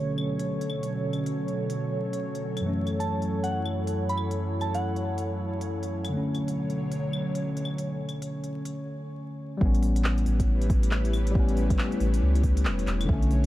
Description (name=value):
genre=future garage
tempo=138 BPM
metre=4/4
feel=swing 62% on 16ths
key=unclear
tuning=A4 = 440 Hz
part: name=tine electric piano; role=accompaniment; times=0.0-13.5 s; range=F#2 to C#4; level=-31 LUFS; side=left 1 dB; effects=vintage 12-bit sampler grit, sidechain pumping, analog delay
part: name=airy breathy pad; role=sustained chords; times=0.0-13.5 s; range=F#2 to C#5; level=-32 LUFS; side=equal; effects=chorus, sidechain pumping
part: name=drifting glass-harmonics texture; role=texture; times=0.0-8.7 s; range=C#4 to C#5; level=-40 LUFS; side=right 2 dB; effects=chorus, built-in reverb
part: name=deep house drum kit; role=drums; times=0.2-13.5 s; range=claves, handclaps, hi-hat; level=-37 LUFS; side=left 1 dB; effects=studio reverb
part: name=soft synth bell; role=melody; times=3.0-5.2 s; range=F#5 to B5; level=-35 LUFS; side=right 2 dB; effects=chorus, tape echo
part: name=soft dub sub bass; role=bass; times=9.6-13.5 s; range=E1 to C#2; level=-24 LUFS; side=equal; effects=sidechain pumping
part: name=electronic kick drum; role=drums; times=9.6-13.2 s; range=none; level=-25 LUFS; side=equal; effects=studio reverb
room=light reverb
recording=vinyl crackle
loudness=-25 LUFS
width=side -15 dB against mid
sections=0.0-9.6 A section; 9.6-13.5 B section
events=filter sweep on analog synth pad 0.0-9.6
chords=0.0 Bm7; 2.7 F#m7; 6.1 Bm7; 9.6 A7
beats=0.04 0.48 | 0.91 1.35 1.78 2.22 | 2.65 3.09 3.52 3.96 | 4.39 4.83 5.26 5.70 | 6.13 6.57 7.00 7.44 | 7.87 8.30 8.74 9.18 | 9.61 10.04 10.48 10.91 | 11.35 11.78 12.22 12.65 | 13.09